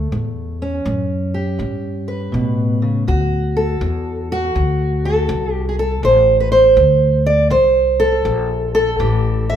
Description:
blues; 81 BPM; 4/4; swing 66% on 8ths; A4 = 440 Hz
fingerpicked steel-string acoustic guitar; melody; 0.0-9.6 s; A2 to E5; -16 LUFS; right 2 dB; slapback echo
upright bass; bass; 0.0-9.6 s; A1 to A2; -19 LUFS; left 2 dB
light reverb; band playing live in one room; -14 LUFS; side -9 dB against mid
0.0-9.6 A section
0.0 A7; 3.1 D7; 9.0 A7(no3)

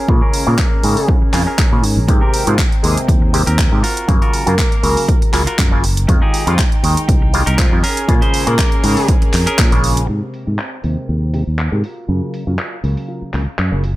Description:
filtered disco house; 120 BPM; 4/4; swing 54% on 16ths; Ab major; A4 = 440 Hz
warm studio violin section; sustained chords; 0.0-14.0 s; C4 to Bb5; -26 LUFS; equal; sidechain pumping, low-pass filter
clean electric guitar; riff; 0.0-13.9 s; C4 to C5; -24 LUFS; equal; sidechain pumping, low-pass filter
auto-wah clav; accompaniment; 0.1-13.8 s; C3 to G5; -22 LUFS; equal; phaser, vintage 12-bit sampler grit, sidechain pumping, low-pass filter
modern bright fingered electric bass; bass; 0.1-14.0 s; Gb1 to Bb2; -17 LUFS; equal; sidechain pumping, low-pass filter
electronic kick drum; drums; 0.1-9.7 s; -14 LUFS; equal
house drum kit; drums; 0.3-13.9 s; handclaps, hi-hat; -22 LUFS; equal; sidechain pumping on hats, low-pass filter on hats, low-pass filter on snare, low-pass filter on room
bright horn section; melody; 0.5-9.2 s; F3 to Bb4; -24 LUFS; left 1 dB; sidechain pumping, low-pass filter, dub echo
digital ambience; -13 LUFS; side -16 dB against mid
0.0-10.1 A section; 10.1-14.0 B section
filter sweep 0.0-10.1, 10.1-14.0
0.0 Bbm7; 2.1 Abmaj9; 3.8 Gbmaj7; 6.1 Fm9; 7.8 Bbm7; 10.1 Abmaj9; 11.8 Gbmaj7

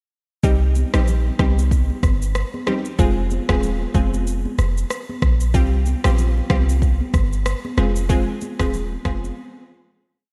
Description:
afrobeats; 94 BPM; 4/4; swing 58% on 16ths; F minor; A4 = 441 Hz
glassy wavetable pluck; accompaniment; 0.4-9.3 s; G3 to Ab4; -28 LUFS; equal; chorus
clean 808-style bass; bass; 0.4-9.3 s; Eb1 to C2; -22 LUFS; equal
afro-pop drum kit; drums; 0.4-9.4 s; kick drum, rim click, shaker; -25 LUFS; equal; vintage 12-bit sampler grit
congas; percussion; 0.4-9.4 s; -34 LUFS; equal
light reverb; -20 LUFS; mono
0.4-10.3 verse
fade-out 8.1-10.3; break 9.4-10.3
0.4 Cm; 3.0 Fm; 5.5 Csus4; 7.8 Fm

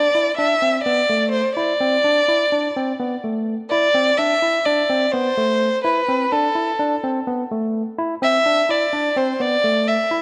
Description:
progressive instrumental, progressive; 253 BPM (eighths); 9/8; straight; A4 = 442 Hz
dark violin; melody; 0.0-10.2 s; A4 to E5; -20 LUFS; equal; tape echo
barky tine electric piano; arpeggios; 0.0-10.2 s; A3 to E4; -25 LUFS; equal; overdrive
moderate plate reverb, RT60 2.4 s; nothing above 10.4 kHz; -19 LUFS; mono
0.0-3.7 A section; 3.7-10.2 B section
violin solo 3.7-10.2
0.0 Dsus2

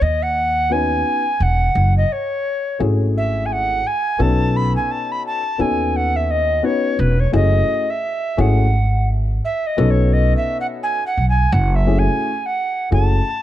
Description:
hip hop; 86 BPM; 4/4; swing 58% on 16ths; F# dorian; A4 = 441 Hz
mellow alto recorder; melody; 0.0-13.4 s; B4 to B5; -20 LUFS; right 1 dB
upright bass; bass; 0.0-13.2 s; E1 to D#2; -17 LUFS; equal
dark upright piano; accompaniment; 0.7-13.2 s; A3 to B4; -22 LUFS; left 5 dB
light reverb, small room ambience; dark, warm production; -16 LUFS; side -12 dB against mid
0.0-12.9 A section
recorder solo 0.0-12.9
0.0 Badd9; 1.8 F#m9; 4.2 B9; 7.3 F#m9; 9.8 B9; 11.5 F#m9

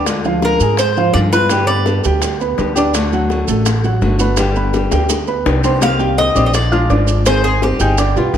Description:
latin, Cuban son and guajira; 167 BPM; 4/4; straight; A4 = 440 Hz
flamenco guitar; accompaniment; 0.0-8.4 s; C3 to Ab4; -20 LUFS; left 4 dB
dark baby grand piano; arpeggios; 0.0-8.4 s; F3 to G6; -19 LUFS; right 4 dB
upright bass; bass; 0.0-8.4 s; G1 to Ab2; -17 LUFS; equal
bongos; percussion; 0.1-8.4 s; -23 LUFS; left 5 dB
maracas; percussion; 0.1-8.4 s; -26 LUFS; right 9 dB
Cuban tres; melody; 0.4-2.0, 5.8-8.3 s; G4 to F5; -17 LUFS; equal
moderate large studio reverb, RT60 1.5 s; -12 LUFS; side -9 dB against mid
0.0-5.8 A section; 5.8-8.4 B section
drum fill 4.9-5.8
0.1 Ddim; 1.5 G; 2.9 D; 4.4 G; 5.8 Cm7; 6.5 Bb7; 7.3 Abmaj7

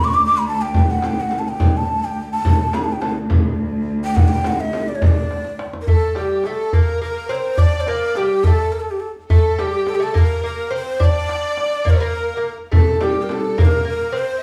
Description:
Persian modal ensemble; 70 BPM (dotted quarters); 6/8; straight; D dastgah chahargah; A4 = 440 Hz
breathy hollow ney; melody; 0.0-14.4 s; G4 to D6; -23 LUFS; equal
dark cello; drone; 0.0-5.9 s; D2; -27 LUFS; equal
tombak; percussion; 0.5-14.4 s; -19 LUFS; equal
frame drum; percussion; 0.7-5.2, 12.7-13.7 s; -28 LUFS; equal
lute; second line; 5.9-14.4 s; G3 to D4; -29 LUFS; equal
rich symphonic violin section; second line; 5.9-14.4 s; G4 to Eb5+45c; -32 LUFS; equal
wet studio reverb, RT60 0.9 s; band playing live in one room, studio reverb; -18 LUFS; mono
0.0-5.9 A section; 5.9-14.4 B section
drum fill 5.3-5.9

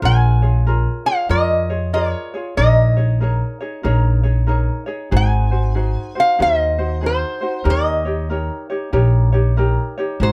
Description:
Hawaiian; 94 BPM; 4/4; swing 63% on 8ths; A4 = 442 Hz
ukulele; accompaniment; 0.0-10.3 s; Eb4 to Db5; -26 LUFS; equal
upright bass; bass; 0.0-10.3 s; Ab1 to F2; -19 LUFS; equal
lap resonator guitar; melody; 0.1-10.3 s; C5 to Ab5; -21 LUFS; equal
light reverb; close, detailed microphones; -18 LUFS; mono
0.0-10.3 A section
0.0 Bbm7; 2.6 Eb7sus4/Bb; 5.1 Ab7; 7.7 Eb7

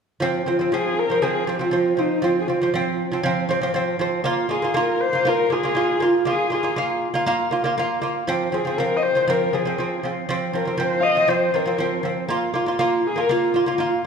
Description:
mongolian traditional, Mongolian folk; 119 BPM; 4/4; straight; F yu mode; A4 = 440 Hz
lute; arpeggios; 0.2-14.0 s; F3 to F4; -22 LUFS; right 2 dB
dark horsehead fiddle; melody; 0.5-13.8 s; Eb4 to F5; -21 LUFS; left 1 dB
wet recital hall reverb, RT60 1.5 s; recorded in a church or concert hall; -19 LUFS; side -6 dB against mid
0.2-14.1 A section
0.2 F5; 4.3 Bb5; 8.3 F5; 12.3 Bb5

